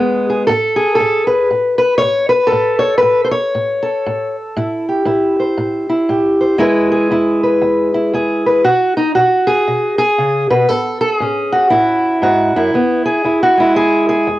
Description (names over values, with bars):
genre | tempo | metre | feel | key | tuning
acoustic country blues, solo or duo | 117 BPM | 4/4 | swing 62% on 8ths | E major | A4 = 440 Hz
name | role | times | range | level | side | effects
fingerpicked steel-string acoustic guitar | solo | 0.0-14.4 s | E2 to C#5 | -12 LUFS | equal | cassette tape
room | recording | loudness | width
light reverb | home recording on cassette, nothing above 10.3 kHz | -12 LUFS | side -16 dB against mid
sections
0.0-14.4 A section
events
none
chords
0.5 N.C.; 4.6 Am7; 6.6 E; 8.6 B5; 10.7 A; 12.7 E